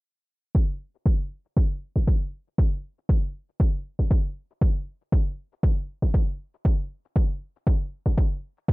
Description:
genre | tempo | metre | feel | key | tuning
afro house | 118 BPM | 4/4 | swing 54% on 16ths | none | none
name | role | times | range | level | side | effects
electronic kick drum | drums | 0.5-8.7 s | none | -21 LUFS | equal | none
cabasa | drums | 0.6-8.7 s | none | -68 LUFS | left 6 dB | none
room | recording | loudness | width
digital ambience | low-pass filter | -23 LUFS | side -22 dB against mid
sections
0.5-8.7 A section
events
filter sweep 0.5-8.7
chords
none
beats
| 0.55 1.06 1.57 2.07 | 2.58 3.09 3.60 4.11 | 4.62 5.12 5.63 6.14 | 6.65 7.16 7.67 8.18 | 8.69

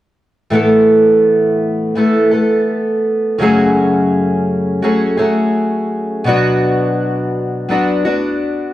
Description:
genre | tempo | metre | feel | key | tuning
pop | 84 BPM | 4/4 | straight | A major | A4 = 440 Hz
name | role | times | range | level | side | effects
fingerpicked twelve-string acoustic guitar | accompaniment | 0.5-8.7 s | F#2 to A4 | -12 LUFS | equal | none
room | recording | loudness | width
moderate studio reverb, RT60 0.6 s | dark, warm production | -12 LUFS | side -14 dB against mid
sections
0.5-8.7 A section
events
none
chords
0.5 Asus2; 3.4 F#madd9; 6.3 Bm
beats
| 0.52 1.24 1.95 2.67 | 3.39 4.11 4.82 5.54 | 6.26 6.97 7.69 8.41

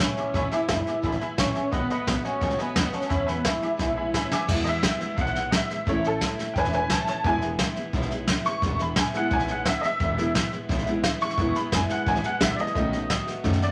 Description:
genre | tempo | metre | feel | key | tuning
rockabilly | 174 BPM | 4/4 | straight | E major | A4 = 440 Hz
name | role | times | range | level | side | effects
electric guitar through a small old amp | melody | 0.0-4.3 s | B3 to E4 | -30 LUFS | equal | phaser
honky-tonk upright piano | accompaniment | 0.0-13.7 s | G#3 to D6 | -30 LUFS | equal | none
picked steel-string acoustic guitar | accompaniment | 0.0-13.7 s | E2 to F#4 | -36 LUFS | equal | none
jazz brush drum kit | drums | 0.0-13.7 s | crash cymbal, hi-hat, kick drum, snare drum | -29 LUFS | equal | none
upright bass | bass | 0.2-13.7 s | E1 to F#2 | -33 LUFS | equal | none
room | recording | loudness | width
moderate large studio reverb, RT60 0.9 s | none | -25 LUFS | mono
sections
0.0-4.5 A section; 4.5-13.7 B section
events
drum fill 3.8-4.5; honky-tonk piano solo 4.5-13.7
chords
0.0 E; 1.7 B7; 3.1 E; 5.9 A; 7.2 E; 12.8 B7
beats
0.00 | 0.35 0.69 1.04 1.38 | 1.73 2.07 2.42 2.76 | 3.11 3.45 3.80 4.14 | 4.49 4.83 5.18 5.52 | 5.87 6.21 6.55 6.90 | 7.24 7.59 7.93 8.28 | 8.62 8.97 9.31 9.66 | 10.00 10.35 10.69 11.04 | 11.38 11.72 12.07 12.41 | 12.76 13.10 13.45

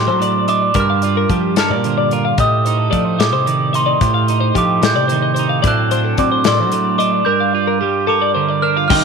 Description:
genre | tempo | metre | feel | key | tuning
math rock and midwest emo | 74 BPM (dotted quarters) | 6/8 | straight | G minor | A4 = 443 Hz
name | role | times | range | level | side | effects
glockenspiel with soft plastic mallets | melody | 0.0-9.0 s | C6 to G6 | -18 LUFS | right 3 dB | none
twelve-string electric guitar | accompaniment | 0.0-9.0 s | G2 to Bb4 | -19 LUFS | right 11 dB | none
twelve-string electric guitar | arpeggios | 0.0-9.0 s | G4 to G5 | -20 LUFS | left 13 dB | wide subtle chorus
picked electric bass | bass | 0.0-9.0 s | G2 to C4 | -20 LUFS | left 1 dB | none
modern studio drum kit | drums | 0.2-9.0 s | crash cymbal, hi-hat, kick drum, snare drum | -20 LUFS | left 5 dB | none
room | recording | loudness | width
moderate plate reverb, RT60 1.8 s, small room ambience | 1960s-style stereo with parts hard left and right | -13 LUFS | side -5 dB against mid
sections
0.0-8.9 A section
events
none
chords
0.0 D7/A; 0.8 Gm7; 2.4 Am7b5; 5.6 D7/A; 7.3 Gm7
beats
| 0.76 1.57 | 2.39 3.20 | 4.02 4.83 | 5.65 6.46 | 7.28 8.09 | 8.91

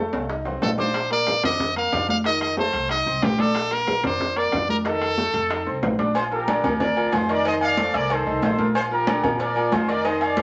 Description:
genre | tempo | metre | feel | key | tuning
latin, salsa | 184 BPM | 4/4 | straight | Bb major | A4 = 445 Hz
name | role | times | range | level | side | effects
bright baby grand piano | accompaniment | 0.0-10.4 s | D3 to Eb6 | -30 LUFS | equal | none
upright bass | bass | 0.0-10.4 s | Bb1 to Bb2 | -35 LUFS | equal | none
bongos and cowbell | percussion | 0.1-10.4 s | none | -34 LUFS | equal | none
congas | percussion | 0.1-10.4 s | none | -29 LUFS | equal | none
timbales and agogo bells | percussion | 0.1-10.4 s | none | -31 LUFS | equal | none
brilliant trumpet | melody | 0.6-5.8 s | G4 to F5 | -25 LUFS | equal | none
bright trumpet section | melody | 6.2-10.4 s | F4 to F5 | -26 LUFS | equal | none
room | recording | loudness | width
wet small room reverb, RT60 0.5 s | vinyl crackle, nothing above 7.9 kHz | -22 LUFS | mono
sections
0.0-6.2 A section; 6.2-10.4 B section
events
drum fill 0.1-0.9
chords
0.0 F7 (rootless); 0.9 Bbadd9; 2.2 F7; 3.5 Bbadd9; 4.9 F7; 6.2 Bb; 7.5 F7; 8.7 Bb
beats
0.29 0.62 | 0.94 1.27 1.60 1.92 | 2.25 2.57 2.90 3.22 | 3.55 3.88 4.20 4.53 | 4.85 5.18 5.50 5.83 | 6.15 6.48 6.80 7.13 | 7.45 7.78 8.10 8.42 | 8.75 9.07 9.40 9.72 | 10.04 10.37

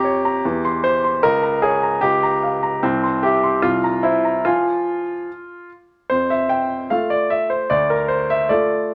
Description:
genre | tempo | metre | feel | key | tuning
classical-period piano sonatina | 75 BPM | 2/4 | straight | F minor | A4 = 440 Hz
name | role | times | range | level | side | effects
clear baby grand piano | solo | 0.0-8.9 s | C2 to C6 | -19 LUFS | equal | none
room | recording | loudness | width
moderate stone room reverb, RT60 1.0 s | none | -19 LUFS | mono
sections
0.0-6.1 A section; 6.1-8.9 A section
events
none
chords
0.4 C/E; 1.2 Bbm/Db; 2.0 Gm7b5/Db; 2.8 C; 3.6 C7; 4.4 Fm; 6.1 F; 7.7 Dm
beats
0.43 | 1.22 2.01 | 2.81 3.62 | 4.44 5.27 | 6.10 6.90 | 7.70 8.49

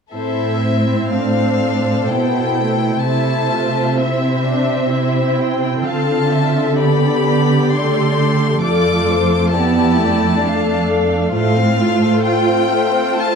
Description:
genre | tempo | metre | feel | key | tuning
classical, slow romantic movement for string orchestra | 61-68 BPM | 3/4 | rubato | A minor | A4 = 440 Hz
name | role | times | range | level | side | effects
rich chamber violin section | melody | 0.1-13.4 s | E5 to D6 | -22 LUFS | left 7 dB | none
rich chamber violin section | second line | 0.1-13.4 s | A3 to G5 | -20 LUFS | left 4 dB | none
rich chamber viola section | accompaniment | 0.1-13.4 s | A3 to G4 | -19 LUFS | right 3 dB | none
warm chamber cello section | bass | 0.1-12.1 s | F2 to D3 | -18 LUFS | right 2 dB | none
room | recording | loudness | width
moderate recital hall reverb, RT60 1.3 s | dark, warm production | -14 LUFS | side -6 dB against mid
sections
0.1-13.4 A section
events
none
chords
0.1 Am; 3.0 Am/C; 5.9 Dm; 8.6 Dm/F; 11.3 F/A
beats
| 0.14 1.12 2.10 | 3.05 4.00 4.93 | 5.86 6.80 7.73 | 8.62 9.53 10.43 | 11.33 12.25 13.16

